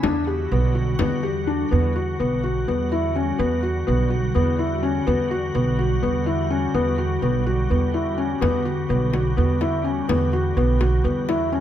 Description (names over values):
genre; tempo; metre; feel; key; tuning
contemporary instrumental, chamber music in an uneven meter; 251 BPM (eighths); 7/8; straight; E dorian; A4 = 440 Hz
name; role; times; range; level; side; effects
soft additive organ-like pad; sustained chords; 0.0-11.6 s; D3 to F#4; -27 LUFS; left 1 dB; ensemble chorus, built-in reverb
felt-muted upright piano; arpeggios; 0.0-11.6 s; B3 to G4; -23 LUFS; left 2 dB; none
upright bass; bass; 0.0-11.6 s; B1 to E2; -23 LUFS; right 2 dB; none
frame drum; percussion; 0.0-1.4, 8.4-11.5 s; none; -29 LUFS; left 5 dB; none
room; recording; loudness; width
light reverb; close, detailed microphones; -19 LUFS; side -11 dB against mid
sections
0.0-1.7 A section; 1.7-11.6 B section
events
none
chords
0.0 Em9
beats
| 0.04 0.28 0.52 0.76 0.99 1.24 1.48 | 1.72 1.96 2.19 2.43 2.67 2.91 3.15 | 3.39 3.63 3.87 4.11 4.35 4.59 4.83 | 5.07 5.31 5.55 5.79 6.03 6.27 6.51 | 6.75 6.98 7.22 7.46 7.70 7.94 8.18 | 8.42 8.66 8.90 9.14 9.38 9.62 9.86 | 10.09 10.33 10.57 10.81 11.05 11.29 11.53